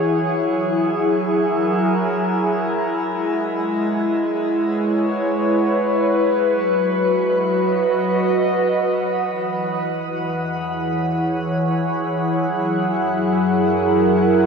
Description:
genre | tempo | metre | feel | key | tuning
ambient | 59 BPM | 3/4 | straight | E lydian | A4 = 440 Hz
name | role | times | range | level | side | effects
warbly tape-like pad | sustained chords | 0.0-14.5 s | E3 to F#5 | -17 LUFS | equal | chorus, built-in reverb, phaser
deep rumbling drone | bass | 10.4-14.5 s | E2 to F#2 | -38 LUFS | equal | built-in reverb
room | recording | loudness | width
wet shimmer reverb, RT60 7.9 s | none | -17 LUFS | side -5 dB against mid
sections
0.0-9.2 A section; 9.2-14.5 B section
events
fade-in on synth drone 9.2-14.5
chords
0.1 F#7; 3.1 E6/G#; 6.2 B/F#; 9.2 E6; 12.3 F#7

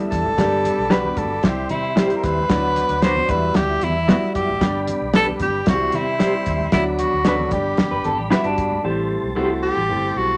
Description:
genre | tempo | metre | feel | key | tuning
uptempo 1960s-style soul | 114 BPM | 4/4 | straight | G major | A4 = 440 Hz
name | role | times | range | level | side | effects
warm grand piano | accompaniment | 0.0-10.3 s | F#3 to A4 | -26 LUFS | equal | none
percussive tonewheel organ | sustained chords | 0.0-10.4 s | G3 to C6 | -34 LUFS | equal | chorus vibrato, stopped rotary speaker
breathy tenor saxophone | melody | 0.1-10.4 s | E4 to C5 | -24 LUFS | equal | none
vintage muted fingered electric bass | bass | 0.1-10.4 s | F#1 to C3 | -30 LUFS | equal | none
cloth-damped thuddy drum kit | drums | 0.1-8.7 s | hi-hat, kick drum, snare drum | -22 LUFS | equal | none
congas | percussion | 0.3-8.8 s | none | -35 LUFS | equal | none
mellow electric guitar | stabs | 0.9-9.5 s | G3 to C5 | -24 LUFS | equal | tremolo
electric guitar through a small old amp | riff | 7.9-8.8 s | D4 to B4 | -25 LUFS | equal | none
room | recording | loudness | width
moderate studio reverb, RT60 0.6 s | none | -20 LUFS | mono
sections
0.0-8.8 A section; 8.8-10.4 B section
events
none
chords
0.4 G; 1.4 C; 2.5 Bm/D; 3.3 Emadd9; 4.6 G; 5.7 C; 6.7 Bm/D; 7.5 G; 8.8 Am7

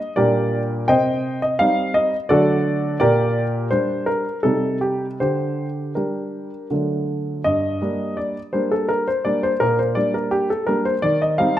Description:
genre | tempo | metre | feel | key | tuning
classical-period piano sonatina | 84 BPM | 3/4 | rubato | G minor | A4 = 440 Hz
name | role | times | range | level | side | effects
warm baby grand piano | solo | 0.0-11.6 s | G2 to G5 | -18 LUFS | equal | none
room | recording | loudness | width
moderate recital hall reverb, RT60 1.4 s | close, detailed microphones | -18 LUFS | side -12 dB against mid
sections
0.0-7.4 A section; 7.4-11.6 A section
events
none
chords
0.2 Gm/Bb; 0.9 Cm; 2.3 D; 3.0 Gm/Bb; 4.4 Cm; 5.2 Gm/D; 6.7 D; 7.4 Gm; 9.6 Gm/Bb; 11.0 Cm/Eb

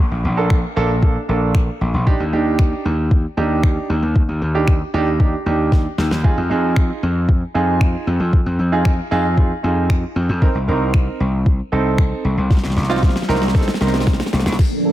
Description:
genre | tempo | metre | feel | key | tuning
dance-pop | 115 BPM | 4/4 | straight | unclear | A4 = 439 Hz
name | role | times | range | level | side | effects
gritty slap bass | bass | 0.0-14.6 s | Bb1 to F2 | -19 LUFS | equal | overdrive, sidechain pumping
downlifter | sound effects | 0.0-2.1 s | none | -38 LUFS | equal | none
warm grand piano | accompaniment | 0.4-14.9 s | Bb3 to Bb4 | -22 LUFS | right 4 dB | sidechain pumping, low-pass filter
smooth R&B drum kit | drums | 0.5-14.7 s | crash cymbal, finger snaps, kick drum, snare drum | -16 LUFS | equal | none
string machine, cellos | sustained chords | 14.6-14.9 s | F3 to D5 | -18 LUFS | right 2 dB | ensemble chorus, sidechain pumping, low-pass filter
room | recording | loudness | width
light reverb | none | -15 LUFS | side -14 dB against mid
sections
0.0-14.6 A section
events
drum fill 5.7-6.2, 12.5-14.6, 14.6-14.9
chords
0.0 Bbmaj7; 2.1 Ebmaj7; 6.2 Fm7; 10.4 Cm7

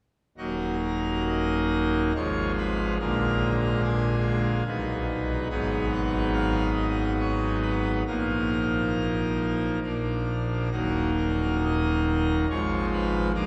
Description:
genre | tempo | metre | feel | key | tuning
classical, chorale-style piece for pipe organ | 69 BPM | 3/4 | uneven beats, rubato | Eb minor | A4 = 443 Hz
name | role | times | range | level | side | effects
pipe organ, full organ | solo | 0.4-13.5 s | Eb1 to F5 | -26 LUFS | equal | none
room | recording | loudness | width
wet cathedral reverb, RT60 6.7 s | heard from further back in the room | -26 LUFS | mono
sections
0.4-13.5 A section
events
none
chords
0.4 Ebm; 2.2 Fdim/Ab; 3.0 Bb7; 4.7 B; 5.5 Abm7; 8.1 Bbsus4; 9.8 Bb; 10.7 Ebm; 12.5 Fdim/Ab

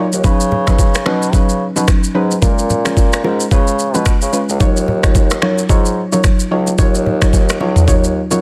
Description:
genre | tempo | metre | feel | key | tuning
afrobeats | 110 BPM | 4/4 | swing 58% on 16ths | Eb minor | A4 = 440 Hz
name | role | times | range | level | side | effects
soft round pluck | accompaniment | 0.0-8.4 s | Gb3 to Db5 | -20 LUFS | equal | chorus
mellow bassoon | bass | 0.0-8.4 s | Db2 to Db3 | -21 LUFS | equal | none
afro-pop drum kit | drums | 0.1-8.4 s | finger snaps, kick drum, rim click, shaker, toms | -16 LUFS | equal | overdrive, soft clipping on snare
bongos and congas | percussion | 0.1-8.4 s | none | -26 LUFS | equal | none
room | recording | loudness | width
light reverb | dense, heavily limited modern master | -14 LUFS | mono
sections
0.0-4.6 A section; 4.6-8.4 B section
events
none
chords
0.2 Db9sus4; 2.4 Bbm7; 3.5 Db7; 4.6 Ebm9

